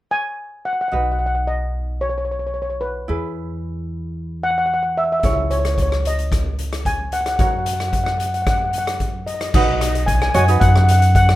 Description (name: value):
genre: calypso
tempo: 111 BPM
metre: 4/4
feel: straight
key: B major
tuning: A4 = 440 Hz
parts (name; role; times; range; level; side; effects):
- steel pan; melody; 0.1-11.4 s; B4 to G#5; -21 LUFS; left 1 dB; none
- ukulele; accompaniment; 0.9-11.1 s; D#4 to C#5; -24 LUFS; right 3 dB; none
- upright bass; bass; 0.9-11.4 s; B1 to F#2; -21 LUFS; equal; none
- street-band drum kit; drums; 5.2-11.4 s; crash cymbal, hi-hat, kick drum, rim click; -22 LUFS; left 1 dB; none
room: moderate studio reverb, RT60 0.6 s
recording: minimal, uncompressed stereo recording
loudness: -17 LUFS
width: side -15 dB against mid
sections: 0.9-9.5 A section; 9.5-11.4 B section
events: none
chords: 0.0 N.C.; 0.9 B; 3.1 E; 5.2 C#madd9; 7.4 F#; 9.5 B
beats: 0.38 | 0.92 1.46 2.00 2.54 | 3.08 3.62 4.16 4.70 | 5.24 5.78 6.32 6.86 | 7.39 7.93 8.47 9.01 | 9.54 10.08 10.62 11.15